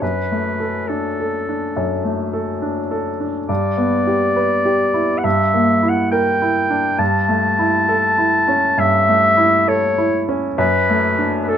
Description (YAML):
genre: classical, romantic duo for clarinet and grand piano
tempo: 68 BPM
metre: 4/4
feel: rubato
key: D major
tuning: A4 = 440 Hz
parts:
  - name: bright clarinet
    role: melody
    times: 0.0-11.6 s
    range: A4 to A5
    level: -17 LUFS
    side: left 1 dB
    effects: none
  - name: clear baby grand piano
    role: accompaniment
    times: 0.0-11.6 s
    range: F#2 to B4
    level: -18 LUFS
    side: equal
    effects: none
room: light reverb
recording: none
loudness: -15 LUFS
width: side -9 dB against mid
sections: 0.0-11.6 A section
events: none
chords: 0.0 D/F#; 3.5 Em7/G; 5.2 Em7b5/G; 7.0 A7/G; 10.6 D/F#